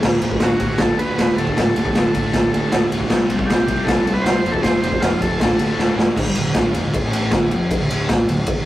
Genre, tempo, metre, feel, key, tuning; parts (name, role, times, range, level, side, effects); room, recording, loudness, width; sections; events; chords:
garage rock duo or trio; 156 BPM; 4/4; straight; A4 = 441 Hz
fuzz guitar; riff; 0.0-8.6 s; D2 to C4; -24 LUFS; right 1 dB; distortion
fuzz picked electric bass; bass; 0.0-8.6 s; D1 to D2; -26 LUFS; equal; overdrive
raw garage drum kit; drums; 0.0-8.6 s; crash cymbal, kick drum, ride cymbal, snare drum; -17 LUFS; equal
combo organ; melody; 0.4-5.9 s; F4 to C5; -24 LUFS; equal
light reverb; rough rehearsal-room recording, tube saturation; -16 LUFS; side -14 dB against mid
0.0-6.2 A section; 6.2-8.7 B section
drum fill 5.8-6.2
0.0 D5; 3.1 C5; 4.4 F5; 5.4 D5